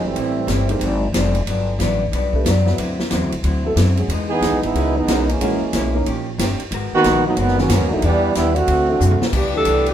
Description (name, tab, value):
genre	jazz, big band swing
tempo	183 BPM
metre	4/4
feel	swing 63% on 8ths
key	unclear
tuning	A4 = 438 Hz
part	bright trombone section	second line	0.0-1.0, 4.3-9.2 s	A#2 to G#4	-18 LUFS	right 2 dB	none
part	vintage hollow-body jazz guitar	accompaniment	0.0-9.9 s	G2 to A#4	-24 LUFS	left 2 dB	none
part	upright bass	bass	0.0-9.9 s	E#1 to F#2	-20 LUFS	equal	none
part	swinging big-band drum kit	drums	0.2-9.9 s	crash cymbal, hi-hat, kick drum, ride cymbal, snare drum, toms	-25 LUFS	equal	none
part	dark baby grand piano	accompaniment	0.7-9.9 s	D#3 to C5	-24 LUFS	equal	none
part	clear saxophone section	sustained chords	9.3-9.9 s	E3 to G4	-27 LUFS	equal	none
part	mellow alto saxophone	melody	9.4-9.9 s	G4 to A4	-18 LUFS	right 1 dB	none
room	moderate studio reverb, RT60 0.8 s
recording	band playing live in one room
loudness	-16 LUFS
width	side -10 dB against mid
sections	0.0-9.3 A section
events	trombone section solo 0.0-9.3; drum fill 9.0-9.3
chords	0.2 Am7; 0.8 G#7#11; 1.5 Gmaj7; 2.8 D9; 4.1 Emaj7; 5.4 A#m7b5; 6.1 D#7; 6.7 G#m9; 8.0 Em7; 8.7 D7; 9.3 G6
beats	| 0.16 0.48 0.81 1.14 | 1.47 1.80 2.12 2.45 | 2.78 3.11 3.44 3.77 | 4.09 4.42 4.75 5.08 | 5.40 5.73 6.06 6.39 | 6.71 7.04 7.37 7.70 | 8.02 8.35 8.68 9.01 | 9.33 9.66